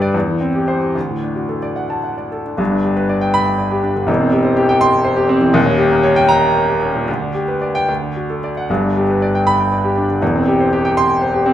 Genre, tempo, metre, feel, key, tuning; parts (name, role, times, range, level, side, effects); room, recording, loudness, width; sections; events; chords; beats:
classical, virtuoso piano study; 71-82 BPM (dotted quarters); 6/8; rubato; G major; A4 = 440 Hz
clear grand piano; solo; 0.0-11.5 s; Eb1 to C6; -14 LUFS; equal
wet large studio reverb, RT60 0.8 s; heard from further back in the room; -14 LUFS; side -11 dB against mid
0.0-2.6 A section; 2.6-11.5 B section
0.1 C/E; 1.0 D; 2.6 G; 4.1 C/E; 5.5 Eb7; 7.1 G/D; 7.9 D; 8.7 G; 10.2 C/E
0.14 | 0.95 1.78 | 2.60 3.35 | 4.08 4.82 | 5.55 6.30 | 7.08 7.89 | 8.69 9.46 | 10.21 10.96